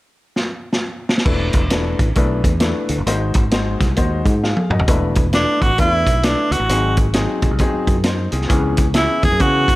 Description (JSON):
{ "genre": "uptempo 1960s-style soul", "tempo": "133 BPM", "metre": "4/4", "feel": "swing 62% on 8ths", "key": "E mixolydian", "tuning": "A4 = 441 Hz", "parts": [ { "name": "vintage drum kit", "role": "drums", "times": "0.4-9.8 s", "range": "crash cymbal, hi-hat, kick drum, snare drum, toms", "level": "-18 LUFS", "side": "equal", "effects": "none" }, { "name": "clear upright piano", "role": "accompaniment", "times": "1.2-9.7 s", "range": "E3 to F5", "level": "-22 LUFS", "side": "left 3 dB", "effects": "none" }, { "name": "fingered electric bass", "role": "bass", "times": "1.3-9.8 s", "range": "E1 to C#3", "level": "-20 LUFS", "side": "equal", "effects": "none" }, { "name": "breathy tenor saxophone", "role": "melody", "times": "5.3-9.8 s", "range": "D4 to G#4", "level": "-17 LUFS", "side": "right 1 dB", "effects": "none" } ], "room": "light reverb, small room ambience", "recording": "none", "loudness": "-15 LUFS", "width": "side -18 dB against mid", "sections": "0.0-1.3 A section; 1.3-4.9 B section; 4.9-9.8 C section", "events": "drum fill 0.4-1.3, 4.4-4.9", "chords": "0.0 N.C.; 1.3 E7sus4; 3.1 G#7; 4.9 E7sus4; 6.7 G#7; 8.5 C#m7" }